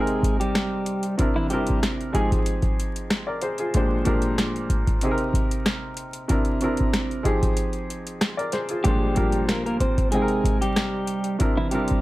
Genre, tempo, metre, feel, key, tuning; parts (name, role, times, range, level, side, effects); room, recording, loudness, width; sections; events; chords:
hip hop, boom-bap hip-hop; 94 BPM; 4/4; swing 54% on 16ths; F dorian; A4 = 439 Hz
clean electric guitar; melody; 0.0-2.3, 8.8-12.0 s; E3 to C5; -26 LUFS; equal; high-pass filter, low-pass filter, plate reverb, tape echo
warm upright piano; accompaniment; 0.0-12.0 s; Bb2 to G5; -25 LUFS; equal; cassette tape, high-pass filter, low-pass filter, plate reverb
booming analog drum machine; drums; 0.1-12.0 s; hi-hat, kick drum, rim click, snare drum; -24 LUFS; equal
light reverb; vinyl crackle; -21 LUFS; side -18 dB against mid
0.0-12.0 A section
break 7.6-8.8
0.0 Abmaj9/C; 1.2 C9; 2.1 Fm9; 3.7 Bb13; 5.0 Cm7; 6.3 C9; 7.3 Fm9; 8.8 Bb13; 10.1 Abmaj9/C; 11.4 C9